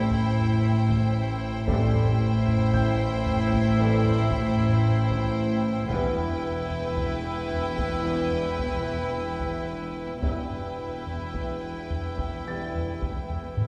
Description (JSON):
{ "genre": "cinematic, suspense film score", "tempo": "54-57 BPM", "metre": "4/4", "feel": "straight", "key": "unclear", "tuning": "A4 = 442 Hz", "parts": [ { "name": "dark studio violin section", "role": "melody", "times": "0.0-13.7 s", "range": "G5", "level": "-40 LUFS", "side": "equal", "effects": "none" }, { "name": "warm chamber violin section", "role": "second line", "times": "0.0-13.7 s", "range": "B4 to C5", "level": "-36 LUFS", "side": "equal", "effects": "none" }, { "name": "rich studio viola section", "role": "accompaniment", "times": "0.0-13.7 s", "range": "E4", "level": "-35 LUFS", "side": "equal", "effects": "none" }, { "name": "rich studio double bass section", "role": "bass", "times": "0.0-13.7 s", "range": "E1 to A1", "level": "-31 LUFS", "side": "equal", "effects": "none" }, { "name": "warm studio cello section", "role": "bass", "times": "0.0-13.7 s", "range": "E2 to A2", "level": "-31 LUFS", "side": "equal", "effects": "none" }, { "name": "warm grand piano", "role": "texture", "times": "0.0-5.9, 12.5-13.7 s", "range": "G6 to A6", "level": "-46 LUFS", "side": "equal", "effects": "none" }, { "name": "taiko ensemble", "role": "drums", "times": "0.1-13.7 s", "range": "none", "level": "-35 LUFS", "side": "equal", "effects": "none" }, { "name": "bright trombone section", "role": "sustained chords", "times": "1.7-12.9 s", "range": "E3 to G3", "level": "-39 LUFS", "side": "equal", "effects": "none" }, { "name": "warm French horn section", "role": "sustained chords", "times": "1.7-12.9 s", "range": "B3 to B4", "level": "-38 LUFS", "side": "equal", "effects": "none" }, { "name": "reverse cymbal", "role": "sound effects", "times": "10.2-13.7 s", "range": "none", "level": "barely audible", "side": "none", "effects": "none" } ], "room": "wet scoring stage reverb, RT60 1.5 s", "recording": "heard from further back in the room", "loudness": "-26 LUFS", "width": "mono", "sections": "0.0-13.7 A section", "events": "none", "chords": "0.0 Am7; 5.9 Em", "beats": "0.63 | 1.68 2.73 3.78 4.83 | 5.89 6.96 8.04 9.12 | 10.22 11.34 12.46 13.57" }